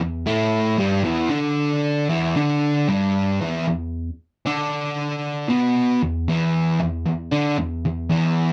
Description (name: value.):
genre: metal.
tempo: 58 BPM.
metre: 4/4.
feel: straight.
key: E minor.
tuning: A4 = 439 Hz.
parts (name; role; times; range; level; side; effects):
fuzz guitar; solo; 0.0-8.5 s; E2 to D4; -22 LUFS; equal; distortion.
room: moderate booth ambience, RT60 0.2 s.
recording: dry, close 1970s-style studio recording.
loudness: -22 LUFS.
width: mono.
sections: 0.0-3.4 A section; 3.4-8.5 B section.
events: none.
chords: 0.0 Em; 3.4 E5.